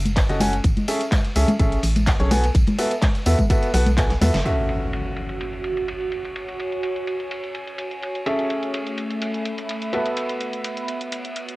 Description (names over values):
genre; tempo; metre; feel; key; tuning
piano house; 126 BPM; 4/4; straight; F# minor; A4 = 441 Hz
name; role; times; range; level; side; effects
organ-like FM bass; bass; 0.0-4.4 s; F#1 to E2; -20 LUFS; equal; tube saturation, sidechain pumping
house drum kit; drums; 0.1-11.6 s; handclaps, hi-hat, snare drum; -30 LUFS; equal; low-pass filter on hats, cassette tape, low-pass filter on snare
congas and tambourine; percussion; 0.1-4.4 s; none; -25 LUFS; left 1 dB; none
electronic kick drum; drums; 0.2-4.1 s; none; -20 LUFS; equal; cassette tape
street-band drum kit; drums; 0.2-11.5 s; ride cymbal, snare drum; -34 LUFS; equal; high-pass filter on cymbals, low-pass filter on cymbals, cassette tape, high-pass filter on snare, low-pass filter on snare, high-pass filter on room, low-pass filter on room
clear grand piano; riff; 0.3-11.6 s; B3 to G#5; -25 LUFS; equal; sidechain pumping, cassette tape
impact; sound effects; 4.5-6.4 s; none; -29 LUFS; equal; none
warbly tape-like pad; texture; 5.1-11.6 s; A3 to B5; -28 LUFS; right 2 dB; chorus, built-in reverb, phaser, sidechain pumping, cassette tape
room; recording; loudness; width
moderate studio reverb, RT60 0.5 s; home recording on cassette; -20 LUFS; side -20 dB against mid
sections
0.0-4.5 A section; 4.5-11.6 B section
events
drum fill 4.1-4.5; band accent 4.3; impact 4.5-6.4; filter sweep on drum 4.5-11.6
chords
0.0 F#m; 0.6 Amaj7; 2.3 B7sus4; 4.5 F#m7; 8.3 Amaj7; 9.9 B7sus4